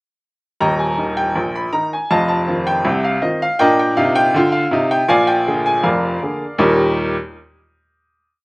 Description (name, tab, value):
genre	ragtime piano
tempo	80 BPM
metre	2/4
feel	straight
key	Eb major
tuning	A4 = 441 Hz
part	clear upright piano	solo	0.6-7.2 s	Eb1 to Cb6	-14 LUFS	equal	none
room	little or no reverb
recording	recorded outdoors, with no room sound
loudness	-14 LUFS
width	side -30 dB against mid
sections	0.6-6.6 A section; 6.6-8.1 final chord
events	none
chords	0.6 Eb; 2.1 F5; 3.6 Eb5/Bb; 5.1 Bb7; 6.6 Eb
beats	| 0.60 1.35 | 2.10 2.85 | 3.59 4.34 | 5.09 5.84 | 6.60